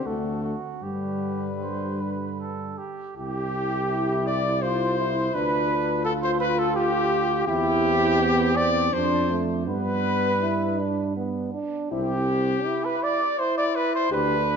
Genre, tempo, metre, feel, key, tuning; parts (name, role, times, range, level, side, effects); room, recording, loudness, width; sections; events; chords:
classical, brass quintet; 76-85 BPM; 3/4; rubato; G major, C major from 3.2 s; A4 = 440 Hz
clear trumpet; melody; 0.0-14.6 s; G4 to D5; -27 LUFS; left 9 dB
clear flugelhorn; second line; 0.0-14.6 s; F#4 to D5; -28 LUFS; right 6 dB
warm French horn; accompaniment; 0.0-14.4 s; G3 to G4; -32 LUFS; left 5 dB
warm trombone; accompaniment; 0.0-14.6 s; D3 to F4; -28 LUFS; right 3 dB
mellow tuba; bass; 0.1-14.6 s; C2 to G2; -29 LUFS; right 4 dB
moderate scoring stage reverb, RT60 1.9 s; nothing above 7.6 kHz; -22 LUFS; side -6 dB against mid
0.0-3.2 A section; 3.2-14.6 B section
0.1 D; 0.8 G; 3.2 C; 5.3 G7/D; 7.5 C/E; 8.9 Dm/F; 9.7 G; 11.9 C